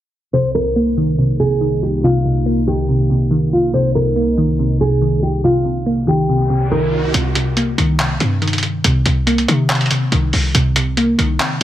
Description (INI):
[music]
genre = hip hop, trap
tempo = 141 BPM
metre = 4/4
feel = half-time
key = C minor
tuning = A4 = 441 Hz
[part]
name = nylon-string guitar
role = melody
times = 0.3-7.1 s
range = F4 to C5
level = -19 LUFS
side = right 1 dB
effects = tape echo
[part]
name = glassy wavetable pluck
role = accompaniment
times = 0.3-11.6 s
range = C3 to Bb3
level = -17 LUFS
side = equal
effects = chorus
[part]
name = dark analog pad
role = sustained chords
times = 0.3-7.1 s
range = C2 to Eb4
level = -21 LUFS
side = equal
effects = chorus
[part]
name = riser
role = sound effects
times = 6.1-7.1 s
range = none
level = -27 LUFS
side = right 3 dB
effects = none
[part]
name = short 808-style bass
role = bass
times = 7.1-11.4 s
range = C2 to C3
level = -18 LUFS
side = equal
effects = none
[part]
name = lo-fi sampler-style drum kit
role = drums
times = 7.1-11.6 s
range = handclaps, hi-hat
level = -18 LUFS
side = equal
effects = none
[sound]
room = light reverb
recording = low-pass filter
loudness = -14 LUFS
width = side -12 dB against mid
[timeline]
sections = 0.3-7.1 A section; 7.1-11.6 B section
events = filter sweep 0.3-7.1; riser 6.1-7.1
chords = 0.3 Cm7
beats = | 0.33 0.76 1.19 1.61 | 2.04 2.46 2.89 3.31 | 3.74 4.16 4.59 5.01 | 5.44 5.87 6.29 6.72 | 7.14 7.57 7.99 8.42 | 8.85 9.27 9.70 10.12 | 10.55 10.97 11.40